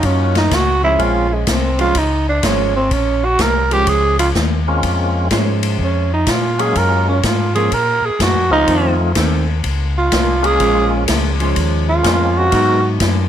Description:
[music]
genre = soul jazz organ trio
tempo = 125 BPM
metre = 4/4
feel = swing 67% on 8ths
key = Bb minor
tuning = A4 = 441 Hz
[part]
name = growling tenor saxophone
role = melody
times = 0.0-12.9 s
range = Ab3 to Bb4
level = -16 LUFS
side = right 3 dB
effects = none
[part]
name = percussive tonewheel organ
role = melody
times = 0.0-1.3, 4.7-12.8 s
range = F3 to Bb4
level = -19 LUFS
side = left 2 dB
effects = slow rotary speaker
[part]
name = mellow tonewheel organ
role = bass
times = 0.0-13.3 s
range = Ab1 to Bb2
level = -18 LUFS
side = left 1 dB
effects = overdrive, chorus vibrato, slow rotary speaker
[part]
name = swinging big-band drum kit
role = drums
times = 0.0-13.2 s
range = hi-hat, kick drum, ride cymbal, snare drum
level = -20 LUFS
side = left 2 dB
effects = none
[part]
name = vintage hollow-body jazz guitar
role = accompaniment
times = 0.8-13.3 s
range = Eb3 to Eb4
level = -22 LUFS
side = right 3 dB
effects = none
[sound]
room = light reverb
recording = none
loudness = -13 LUFS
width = side -10 dB against mid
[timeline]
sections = 0.0-13.3 A section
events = tenor saxophone solo 0.0-13.3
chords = 0.0 Ebm7; 1.0 Bbm7; 6.8 Gbmaj7; 8.7 F7; 10.6 Bbm7; 12.5 Abm7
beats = 0.03 0.51 | 0.99 1.47 1.95 2.43 | 2.91 3.39 3.87 4.35 | 4.83 5.31 5.79 6.27 | 6.75 7.23 7.71 8.19 | 8.68 9.16 9.64 10.12 | 10.60 11.08 11.56 12.04 | 12.52 13.01

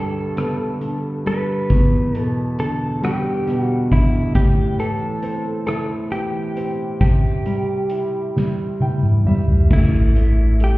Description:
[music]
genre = six-eight pop ballad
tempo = 45 BPM (dotted quarters)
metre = 6/8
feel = straight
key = unclear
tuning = A4 = 437 Hz
[part]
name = direct-recorded clean electric guitar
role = melody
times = 0.0-10.8 s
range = E4 to B4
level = -25 LUFS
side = equal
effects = spring reverb
[part]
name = warm upright piano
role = accompaniment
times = 0.0-10.8 s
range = E2 to G5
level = -22 LUFS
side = equal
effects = none
[part]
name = soft-mallet drum kit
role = drums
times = 0.4-10.8 s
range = crash cymbal, hi-hat, kick drum, rim click, snare drum, toms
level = -18 LUFS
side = equal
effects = none
[part]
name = mellow fretless electric bass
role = bass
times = 9.7-10.8 s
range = A1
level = -15 LUFS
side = equal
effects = none
[sound]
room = light reverb, studio reverb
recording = heard muffled through a wall, stone room reverb, EQ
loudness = -17 LUFS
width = side -18 dB against mid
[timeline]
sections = 0.0-9.7 A section; 9.7-10.8 B section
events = drum fill 8.4-9.7; upright piano fill 8.4-9.7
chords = 0.0 Gadd9; 1.7 Em7; 4.4 Am7; 7.0 C; 9.7 A5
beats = 0.37 | 1.71 3.04 | 4.36 5.68 | 7.01 8.35 | 9.71

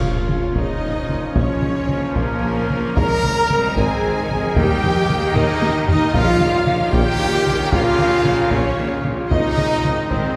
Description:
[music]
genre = cinematic, epic orchestral film score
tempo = 76 BPM (dotted quarters)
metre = 6/8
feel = straight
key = Bb dorian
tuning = A4 = 441 Hz
[part]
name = clear symphonic violin section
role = melody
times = 0.0-10.4 s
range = Bb4 to Bb5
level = -34 LUFS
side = equal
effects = none
[part]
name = warm symphonic violin section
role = second line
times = 0.0-10.4 s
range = Bb4 to Bb5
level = -29 LUFS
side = equal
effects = none
[part]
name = rich symphonic viola section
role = accompaniment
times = 0.0-10.4 s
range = Bb3 to Bb4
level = -29 LUFS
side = equal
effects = none
[part]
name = brilliant trombone section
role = sustained chords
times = 0.0-10.4 s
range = Db3 to Db4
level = -32 LUFS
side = equal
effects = none
[part]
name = dark French horn section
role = sustained chords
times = 0.0-10.4 s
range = Bb3 to Bb4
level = -26 LUFS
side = equal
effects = none
[part]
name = mellow woodwind section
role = sustained chords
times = 0.0-10.4 s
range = Bb3 to Eb5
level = -33 LUFS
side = equal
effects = none
[part]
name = warm trumpet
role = stabs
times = 0.0-10.4 s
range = Bb3 to Bb4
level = -27 LUFS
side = equal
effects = none
[part]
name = clear symphonic double bass section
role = bass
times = 0.0-10.2 s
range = Ab1 to Eb2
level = -30 LUFS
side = equal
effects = none
[part]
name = mellow tuba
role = bass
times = 0.0-10.2 s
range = Ab1 to Eb2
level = -29 LUFS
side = equal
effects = none
[part]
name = rich symphonic cello section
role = bass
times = 0.0-10.4 s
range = C3 to G3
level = -30 LUFS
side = equal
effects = none
[part]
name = solo taiko drums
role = drums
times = 0.0-10.4 s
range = none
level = -25 LUFS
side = equal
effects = none
[part]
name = timpani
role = percussion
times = 0.0-0.5, 6.1-6.9 s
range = Bb2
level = -37 LUFS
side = equal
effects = none
[sound]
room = wet cathedral reverb, RT60 6.4 s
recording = recorded in a church or concert hall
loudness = -18 LUFS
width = mono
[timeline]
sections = 0.0-10.4 A section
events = band accent 0.0; drum fill 5.4-6.1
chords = 0.0 Bbm; 3.0 Ab; 4.6 Eb; 6.1 Bbm; 9.3 Ab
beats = 0.56 | 1.36 2.16 | 2.97 3.77 | 4.57 5.35 | 6.14 6.93 | 7.72 8.51 | 9.30 10.11

